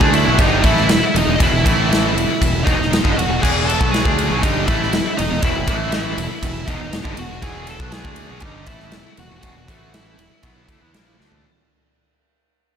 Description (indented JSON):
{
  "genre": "quiet-loud alternative rock",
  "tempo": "120 BPM",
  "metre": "4/4",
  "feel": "straight",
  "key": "unclear",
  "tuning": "A4 = 437 Hz",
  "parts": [
    { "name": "fuzz lead guitar", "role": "melody", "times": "0.0-11.1 s", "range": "D#4 to A5", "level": "-22 LUFS", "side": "equal", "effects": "distortion" },
    { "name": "distorted electric guitar", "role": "riff", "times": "0.0-11.4 s", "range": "E2 to D4", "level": "-28 LUFS", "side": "left 1 dB", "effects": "none" },
    { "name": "heavy high-gain guitar", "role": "riff", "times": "0.0-11.4 s", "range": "E2 to D4", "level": "-25 LUFS", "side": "left 9 dB", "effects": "distortion, slapback echo" },
    { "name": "raw garage guitar", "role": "riff", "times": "0.0-11.4 s", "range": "E2 to D4", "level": "-25 LUFS", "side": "right 10 dB", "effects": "overdrive, slapback echo" },
    { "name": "growling fingered electric bass", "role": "bass", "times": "0.0-11.4 s", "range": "E1 to E2", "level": "-23 LUFS", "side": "equal", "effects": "overdrive" },
    { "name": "big rock drum kit", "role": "drums", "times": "0.0-11.4 s", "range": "crash cymbal, kick drum, ride cymbal, snare drum, toms", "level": "-19 LUFS", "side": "equal", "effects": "none" }
  ],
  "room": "moderate lush hall reverb, RT60 2.2 s",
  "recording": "big arena sound",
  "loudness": "-15 LUFS",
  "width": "side -8 dB against mid",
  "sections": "0.0-11.4 A section",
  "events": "fade-out 0.0-11.4; drum fill 11.2",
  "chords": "0.0 E5; 1.7 A5; 2.2 E; 5.7 A5; 6.2 E; 9.7 A5; 10.2 E5"
}